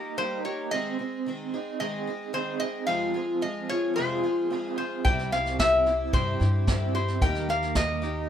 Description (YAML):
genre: acoustic folk duo or small band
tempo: 111 BPM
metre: 4/4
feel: straight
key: Ab major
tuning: A4 = 436 Hz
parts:
  - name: metal-body resonator slide guitar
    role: melody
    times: 0.0-8.3 s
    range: C5 to G5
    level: -28 LUFS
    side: left 2 dB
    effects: none
  - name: picked twelve-string acoustic guitar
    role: accompaniment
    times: 0.0-8.3 s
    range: F2 to Ab4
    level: -31 LUFS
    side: left 2 dB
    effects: none
  - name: electric guitar through a small old amp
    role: arpeggios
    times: 0.0-8.3 s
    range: F3 to Ab4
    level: -34 LUFS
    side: right 8 dB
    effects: tremolo
  - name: upright bass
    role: bass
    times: 5.0-8.3 s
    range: C2 to G2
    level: -28 LUFS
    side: equal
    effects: none
  - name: vintage brush drum kit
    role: drums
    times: 5.1-8.1 s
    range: kick drum, snare drum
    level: -28 LUFS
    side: equal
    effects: none
room: light reverb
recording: minimal, uncompressed stereo recording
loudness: -24 LUFS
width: side -9 dB against mid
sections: 0.0-8.3 A section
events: none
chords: 0.0 Eb; 0.7 Ab/Eb; 2.9 Fm; 5.1 C; 7.2 Eb